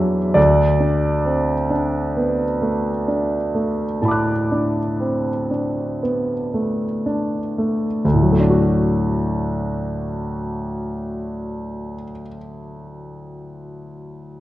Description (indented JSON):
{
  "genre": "classical, impressionist solo piano",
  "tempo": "28-35 BPM",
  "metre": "4/4",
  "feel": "rubato",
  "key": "D mixolydian",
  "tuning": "A4 = 441 Hz",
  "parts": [
    { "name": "warm concert grand piano", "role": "solo", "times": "0.0-14.4 s", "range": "D2 to F#6", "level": "-19 LUFS", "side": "equal", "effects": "none" }
  ],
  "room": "wet scoring stage reverb, RT60 1.9 s",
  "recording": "worn, warbling old tape, cassette tape, warbly pitch drift, nothing above 10.9 kHz",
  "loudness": "-18 LUFS",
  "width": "side -15 dB against mid",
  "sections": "0.0-8.0 A section; 8.0-14.4 B section",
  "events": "slowing down 0.0-8.0",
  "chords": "0.4 D6; 8.0 D",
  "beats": "| 0.35 2.16 4.02 5.99 | 8.04 9.88 11.73 13.59"
}